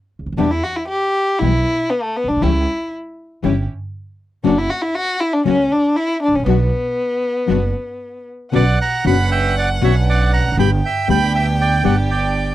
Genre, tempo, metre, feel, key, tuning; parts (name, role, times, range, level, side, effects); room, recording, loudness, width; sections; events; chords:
tango; 118 BPM; 4/4; rubato; B minor, B harmonic minor from 8.5 s; A4 = 441 Hz
upright bass; bass; 0.2-12.5 s; E1 to E2; -18 LUFS; right 2 dB
warm violin; second line; 0.4-12.5 s; A3 to G5; -19 LUFS; left 1 dB
nylon-string guitar; accompaniment; 0.4-11.9 s; B2 to G4; -18 LUFS; left 8 dB
rich chamber string section; stabs; 0.4-12.5 s; A#3 to B4; -28 LUFS; right 4 dB
bandoneon; melody; 8.6-12.5 s; C#5 to B5; -19 LUFS; right 4 dB
light reverb; dry, close 1970s-style studio recording; -15 LUFS; side -14 dB against mid
0.0-8.5 A section; 8.5-12.5 B section
violin solo 0.0-8.5; break 8.0-8.5
0.4 Em; 2.4 C#dim; 4.4 F#; 6.5 Bm; 8.5 Bmadd9; 10.6 G